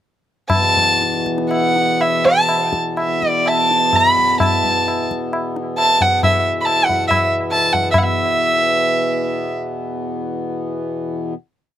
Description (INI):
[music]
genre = indian classical, Hindustani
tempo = 119-168 BPM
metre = 4/4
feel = straight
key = unclear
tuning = A4 = 440 Hz
[part]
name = warm violin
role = melody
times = 0.5-9.5 s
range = E5 to B5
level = -15 LUFS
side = right 1 dB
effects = none
[part]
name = pedal harmonium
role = drone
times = 0.5-11.3 s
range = E2 to B2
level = -22 LUFS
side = left 1 dB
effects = stereo widening
[part]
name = tabla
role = percussion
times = 0.5-8.1 s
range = none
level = -22 LUFS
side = left 1 dB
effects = slapback echo
[sound]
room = little or no reverb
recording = recorded outdoors, with no room sound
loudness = -15 LUFS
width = side -11 dB against mid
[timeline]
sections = 0.5-7.9 theme; 7.9-11.0 final chord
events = speeding up 0.5-11.0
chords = none